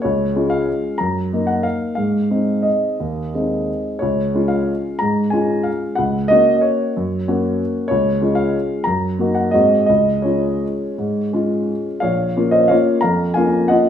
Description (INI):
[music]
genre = classical, piano waltz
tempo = 158-198 BPM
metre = 3/4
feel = rubato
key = Db major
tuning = A4 = 440 Hz
[part]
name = warm grand piano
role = solo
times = 0.0-13.9 s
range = Bb1 to Bb5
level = -16 LUFS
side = equal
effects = none
[sound]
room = light reverb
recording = small room ambience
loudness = -16 LUFS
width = side -9 dB against mid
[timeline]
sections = 0.0-12.1 A section; 12.1-13.9 B section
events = none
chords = 0.0 Db; 1.0 Ebm/Gb; 2.0 Ab; 4.0 Db; 6.0 Gb/Db; 7.9 Db; 8.9 Ebm/Gb; 9.5 Ab7; 9.9 Db; 12.1 Bbm